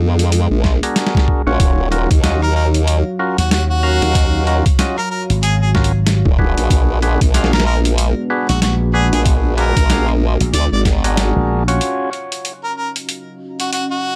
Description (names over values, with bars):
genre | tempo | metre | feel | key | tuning
glitch hop | 94 BPM | 4/4 | swing 59% on 16ths | Eb minor | A4 = 440 Hz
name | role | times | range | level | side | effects
dark analog pad | sustained chords | 0.0-14.2 s | Gb3 to F5 | -28 LUFS | equal | chorus, sidechain pumping
formant-sweep wobble bass | bass | 0.0-11.3 s | Eb1 to F2 | -18 LUFS | equal | chorus, tube saturation
boom bap sampler-style drum kit | drums | 0.2-13.9 s | hi-hat, rim click, snare drum | -22 LUFS | equal | none
electronic kick drum | drums | 0.6-11.0 s | none | -17 LUFS | equal | none
percussive tonewheel organ | stabs | 0.8-12.1 s | Db4 to F5 | -23 LUFS | equal | overdrive, vintage 12-bit sampler grit, sidechain pumping, low-pass filter, digital delay
clear harmonica | melody | 2.4-14.2 s | Gb4 to D5 | -24 LUFS | equal | vintage 12-bit sampler grit
slap bass with an envelope filter | bass | 3.4-11.8 s | Ab1 to Eb2 | -18 LUFS | equal | none
room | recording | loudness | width
light reverb | none | -16 LUFS | mono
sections
0.0-11.8 A section; 11.8-14.2 B section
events
kick drops out 11.2-11.8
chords
0.0 Bb7b9b13; 1.6 Ebm9; 6.7 Bb7b9b13; 11.8 Ebm9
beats
0.32 0.96 | 1.60 2.24 2.88 3.51 | 4.15 4.79 5.43 6.07 | 6.71 7.34 7.98 8.62 | 9.26 9.90 10.54 11.17 | 11.81 12.45 13.09 13.73